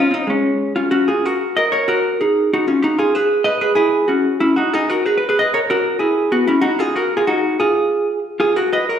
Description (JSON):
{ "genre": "musette", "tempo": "188 BPM", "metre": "3/4", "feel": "rubato", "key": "F# major", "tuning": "A4 = 439 Hz", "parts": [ { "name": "vintage hollow-body jazz guitar", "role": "solo", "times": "0.0-9.0 s", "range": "Ab3 to D#5", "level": "-15 LUFS", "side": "equal", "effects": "none" } ], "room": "wet recital hall reverb, RT60 1.2 s", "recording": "recorded in a church or concert hall", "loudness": "-15 LUFS", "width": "side -8 dB against mid", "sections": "0.9-9.0 A section", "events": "none", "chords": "0.0 Db5; 0.9 F#; 2.8 G#m; 3.8 F#5; 4.7 B6; 5.7 Eadd9; 6.6 D#madd9; 7.6 N.C." }